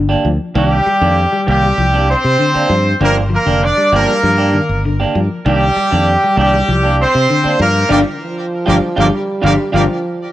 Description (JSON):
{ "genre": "afrobeat", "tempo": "98 BPM", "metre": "4/4", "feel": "straight", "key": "C minor", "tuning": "A4 = 440 Hz", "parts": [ { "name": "semi-hollow electric guitar", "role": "arpeggios", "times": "0.0-9.8 s", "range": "D3 to G3", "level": "-19 LUFS", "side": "left 4 dB", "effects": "phaser, cassette tape, plate reverb" }, { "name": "modern bright fingered electric bass", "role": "bass", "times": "0.0-9.9 s", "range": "F1 to C3", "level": "-16 LUFS", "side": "equal", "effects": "none" }, { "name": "semi-hollow electric guitar", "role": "stabs", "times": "0.1-9.8 s", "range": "Eb3 to G4", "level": "-19 LUFS", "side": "right 4 dB", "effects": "cassette tape, plate reverb" }, { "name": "brilliant horn section", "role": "melody", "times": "0.6-9.8 s", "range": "G4 to D5", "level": "-16 LUFS", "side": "equal", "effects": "cassette tape, plate reverb, tape echo" }, { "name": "raspy tenor saxophone", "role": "second line", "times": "0.6-9.8 s", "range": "G3 to D4", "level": "-21 LUFS", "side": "right 2 dB", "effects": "cassette tape, plate reverb" }, { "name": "breathy bass trombone", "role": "second line", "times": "8.2-10.3 s", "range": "F3 to G3", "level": "-21 LUFS", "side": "right 2 dB", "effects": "cassette tape, plate reverb" } ], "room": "moderate small room ambience, RT60 0.5 s", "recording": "home recording on cassette", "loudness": "-11 LUFS", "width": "side -14 dB against mid", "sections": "0.0-10.3 A section", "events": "band accent 7.9-10.3", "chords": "0.0 Gm7; 0.6 Cm9; 3.0 Gm7; 5.5 Cm9; 7.9 Gm7" }